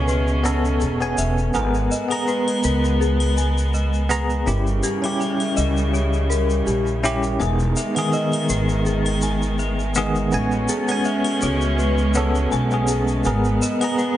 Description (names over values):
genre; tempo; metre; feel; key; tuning
trip hop; 82 BPM; 4/4; swing 54% on 16ths; G# harmonic minor; A4 = 441 Hz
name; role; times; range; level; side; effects
bell-like tine electric piano; accompaniment; 0.0-14.2 s; D#3 to A#5; -24 LUFS; equal; medium stereo tremolo, tape echo
dark chamber string section; sustained chords; 0.0-14.2 s; B2 to C#4; -25 LUFS; right 2 dB; vintage 12-bit sampler grit
dark detuned synth bell; arpeggios; 0.0-14.2 s; G4 to G#5; -27 LUFS; left 4 dB; chorus, phaser, ping-pong delay
upright bass; bass; 0.0-13.6 s; E1 to C#2; -22 LUFS; equal; none
egg shaker and triangle; percussion; 0.1-14.1 s; none; -30 LUFS; left 2 dB; none
room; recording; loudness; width
light reverb, small room ambience; nothing above 10.3 kHz; -18 LUFS; side -12 dB against mid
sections
0.0-1.5 A section; 1.5-14.2 B section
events
none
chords
0.0 Amaj9; 1.5 G#madd9; 4.5 D#7b9/G; 7.4 Emaj7; 10.3 Amaj9; 13.3 G#madd9